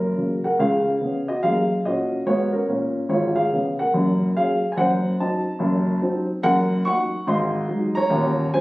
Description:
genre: jazz, stride piano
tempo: 144 BPM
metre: 4/4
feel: swing 63% on 8ths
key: F# major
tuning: A4 = 440 Hz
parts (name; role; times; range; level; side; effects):
- dark upright piano; solo; 0.0-8.6 s; Eb1 to Db6; -19 LUFS; equal; none
room: moderate studio reverb, RT60 0.6 s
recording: recorded on a phone in the room, studio reverb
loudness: -19 LUFS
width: side -19 dB against mid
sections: 0.0-8.6 A section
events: none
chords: 0.0 F#; 0.6 C#7; 1.4 F#; 3.1 C#7/G#; 3.9 F#; 4.8 F#dim7; 6.4 Ebm/Gb; 7.3 Ab7; 8.1 Ab7/Eb

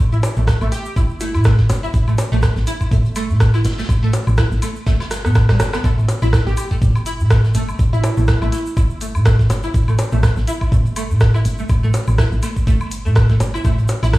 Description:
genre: minimal techno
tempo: 123 BPM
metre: 4/4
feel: swing 56% on 16ths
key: unclear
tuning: A4 = 440 Hz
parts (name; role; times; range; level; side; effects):
- woody FM bass; bass; 0.0-14.2 s; G1 to A2; -18 LUFS; equal; sidechain pumping
- string-like resonator pluck; riff; 0.1-14.1 s; G3 to E4; -27 LUFS; right 1 dB; phaser, ensemble chorus, sidechain pumping, digital delay
- jazz brush drum kit; drums; 0.1-14.2 s; hi-hat, snare drum; -34 LUFS; left 1 dB; sidechain pumping on hats, high-pass filter on hats, high-pass filter on snare, high-pass filter on room
- egg shaker; percussion; 0.1-14.2 s; none; -38 LUFS; right 1 dB; none
- electronic toms, bongos and woodblock; percussion; 0.1-14.1 s; none; -21 LUFS; equal; none
- minimal click drum kit; drums; 0.2-14.2 s; hi-hat, rim click; -25 LUFS; right 1 dB; none
- electronic kick drum; drums; 0.5-14.2 s; none; -16 LUFS; equal; none
- plucky unison lead; melody; 0.7-1.4, 6.5-8.6 s; E4 to G4; -28 LUFS; right 1 dB; analog chorus, dub echo
room: light reverb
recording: played on a big sound system in a bare room, stone room reverb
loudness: -14 LUFS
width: side -18 dB against mid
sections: 0.0-14.2 A section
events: drum fill 5.1-5.8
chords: 0.0 A5

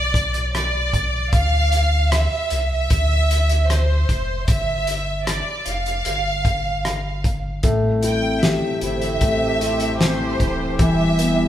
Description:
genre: pop ballad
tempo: 76 BPM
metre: 4/4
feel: straight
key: unclear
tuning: A4 = 441 Hz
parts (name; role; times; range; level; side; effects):
- warm studio violin section; melody; 0.0-11.5 s; C5 to G5; -23 LUFS; right 1 dB; digital delay
- warm sub bass; bass; 0.0-11.5 s; D1 to D2; -23 LUFS; equal; none
- loose indie drum kit; drums; 0.1-11.4 s; hi-hat, kick drum, rim click, snare drum; -23 LUFS; equal; none
- warm baby grand piano; accompaniment; 7.6-11.5 s; E3 to G4; -22 LUFS; left 2 dB; none
- sweeping resonant pad; sustained chords; 7.6-11.5 s; E3 to G4; -26 LUFS; equal; chorus
- nylon-string guitar; arpeggios; 7.6-11.5 s; A2 to C5; -26 LUFS; right 1 dB; none
room: wet large studio reverb, RT60 1.4 s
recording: band playing live in one room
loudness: -17 LUFS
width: side -11 dB against mid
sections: 0.0-11.5 A section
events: none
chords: 0.0 Asus4 (rootless); 1.3 Dm7; 4.5 Fsus2; 7.6 Am7; 10.8 Em

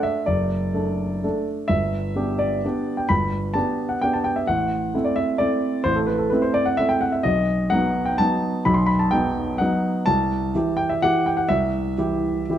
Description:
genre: classical, piano waltz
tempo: 128 BPM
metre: 3/4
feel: uneven beats, rubato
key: unclear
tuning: A4 = 439 Hz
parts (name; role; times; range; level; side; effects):
- warm baby grand piano; solo; 0.0-12.6 s; F#1 to C6; -19 LUFS; equal; none
room: moderate recital hall reverb, RT60 1.4 s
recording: close, detailed microphones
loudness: -19 LUFS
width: side -10 dB against mid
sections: 0.0-12.6 A section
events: none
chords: 0.0 D/F#; 1.7 G; 4.5 Am; 7.2 B; 10.1 C

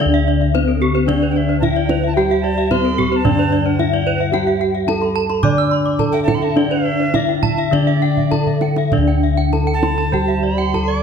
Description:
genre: Balinese gamelan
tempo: 99-111 BPM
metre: 4/4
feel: straight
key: D slendro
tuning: A4 = 438 Hz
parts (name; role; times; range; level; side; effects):
- gamelan-type bronze metallophone; melody; 0.0-11.0 s; C4-45c to D5; -20 LUFS; right 1 dB; none
- alto recorder; second line; 0.0-11.0 s; D5 to D6; -25 LUFS; right 4 dB; none
- gamelan-type bronze metallophone; accompaniment; 0.0-11.0 s; D3 to D4; -22 LUFS; left 3 dB; none
- gamelan-type bronze metallophone; arpeggios; 0.0-10.9 s; A4+25c to D6; -23 LUFS; left 6 dB; none
- gamelan-type bossed gongs; bass; 0.0-11.0 s; D2 to G4-35c; -21 LUFS; left 1 dB; none
- kendang; percussion; 0.0-10.9 s; none; -23 LUFS; right 5 dB; none
- gamelan-type bronze metallophone; arpeggios; 0.1-11.0 s; G4-35c to E6+30c; -25 LUFS; right 5 dB; none
room: moderate scoring stage reverb, RT60 1.5 s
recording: none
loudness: -14 LUFS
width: side -7 dB against mid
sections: 0.0-8.9 A section; 8.9-11.0 B section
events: drum fill 8.2-8.9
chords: none

